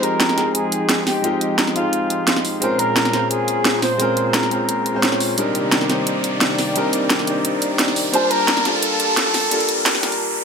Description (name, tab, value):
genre	liquid drum and bass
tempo	174 BPM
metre	4/4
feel	straight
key	F minor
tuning	A4 = 439 Hz
part	mellow flugelhorn	melody	0.0-5.2, 8.1-10.2 s	Eb4 to C5	-22 LUFS	equal	ping-pong delay
part	clear concert grand piano	accompaniment	0.0-10.4 s	G3 to A5	-22 LUFS	left 1 dB	ping-pong delay
part	warm analog pad	sustained chords	0.0-10.2 s	Bb2 to C6	-26 LUFS	equal	wide subtle chorus
part	drum and bass drum kit	drums	0.0-10.2 s	hi-hat, snare drum	-19 LUFS	right 1 dB	overdrive
part	riser	sound effects	0.0-10.4 s	none	-26 LUFS	equal	none
room	moderate digital room reverb, RT60 1.2 s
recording	high-pass filter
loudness	-16 LUFS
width	side -6 dB against mid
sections	0.0-10.4 A section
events	build-up 0.0-10.4; riser 0.0-10.4; filter sweep 0.0-10.4; break 10.2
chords	0.0 Fm9; 2.6 Bbm9; 5.4 Cm9; 8.1 Gm9